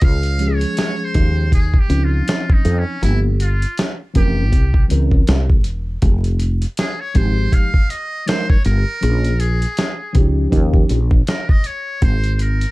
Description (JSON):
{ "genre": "hip hop, jazz-hop", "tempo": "80 BPM", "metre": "4/4", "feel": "swing 58% on 16ths", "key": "unclear", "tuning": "A4 = 440 Hz", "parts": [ { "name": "trumpet with metal mute", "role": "melody", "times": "0.0-12.7 s", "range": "Db4 to F5", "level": "-25 LUFS", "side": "right 1 dB", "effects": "plate reverb" }, { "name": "woody fretless electric bass", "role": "bass", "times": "0.0-12.6 s", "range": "E1 to F2", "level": "-16 LUFS", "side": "equal", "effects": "analog chorus" }, { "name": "dusty soul sampler-style drum kit", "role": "drums", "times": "0.0-12.7 s", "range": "hi-hat, kick drum, snare drum", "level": "-16 LUFS", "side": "equal", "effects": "none" }, { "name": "mellow tine electric piano", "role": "accompaniment", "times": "0.4-11.0 s", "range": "Fb3 to Bb4", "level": "-23 LUFS", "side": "equal", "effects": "medium stereo tremolo" } ], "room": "little or no reverb", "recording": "dark, warm production, vinyl crackle", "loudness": "-14 LUFS", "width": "side -20 dB against mid", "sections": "0.0-12.7 A section", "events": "muted trumpet solo 0.0-12.7", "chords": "0.0 Dbmaj7; 3.0 Gm7; 4.5 C7b9; 6.0 Fm9; 9.0 Bbm7; 10.5 Eb9; 12.0 Abadd9", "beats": "| 0.02 0.77 1.52 2.27 | 3.02 3.77 4.52 5.27 | 6.02 6.77 7.52 8.27 | 9.02 9.77 10.52 11.27 | 12.02" }